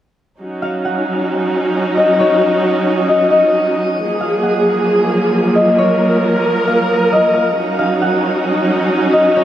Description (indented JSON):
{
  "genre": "hip hop",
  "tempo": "134 BPM",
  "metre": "4/4",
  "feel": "half-time",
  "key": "Eb minor",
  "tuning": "A4 = 441 Hz",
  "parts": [
    { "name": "dark symphonic string section", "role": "sustained chords", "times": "0.4-9.4 s", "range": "F3 to Bb4", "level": "-14 LUFS", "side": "right 1 dB", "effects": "none" },
    { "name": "concert harp", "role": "melody", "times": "0.6-9.4 s", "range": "Db5 to Gb5", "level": "-16 LUFS", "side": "left 2 dB", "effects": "tape echo" }
  ],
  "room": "moderate shimmer reverb, RT60 7.4 s",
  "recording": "none",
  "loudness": "-12 LUFS",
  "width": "side -11 dB against mid",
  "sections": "0.4-9.4 A section",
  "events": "none",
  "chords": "0.4 Ebm7; 4.0 Gbmaj9; 7.6 Ebm7"
}